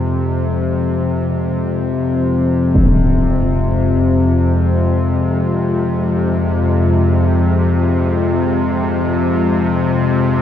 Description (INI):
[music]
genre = dark ambient drone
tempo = free time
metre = none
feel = none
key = F minor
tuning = A4 = 438 Hz
[part]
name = deep dark ambient pad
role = sustained chords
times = 0.0-10.4 s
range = Ab3 to Eb5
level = -22 LUFS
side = left 3 dB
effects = chorus, built-in reverb
[part]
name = bowed-like drone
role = drone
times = 0.0-10.4 s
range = F2 to C3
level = -14 LUFS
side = left 1 dB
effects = built-in reverb
[part]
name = impact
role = percussion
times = 2.8-2.9 s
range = none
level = -17 LUFS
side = equal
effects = low-pass filter on sfx
[sound]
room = moderate spring reverb, RT60 2.9 s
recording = none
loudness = -13 LUFS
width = side -10 dB against mid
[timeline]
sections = 0.0-10.4 A section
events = fade-in on ambient pad 0.0-10.4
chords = 0.0 Fm7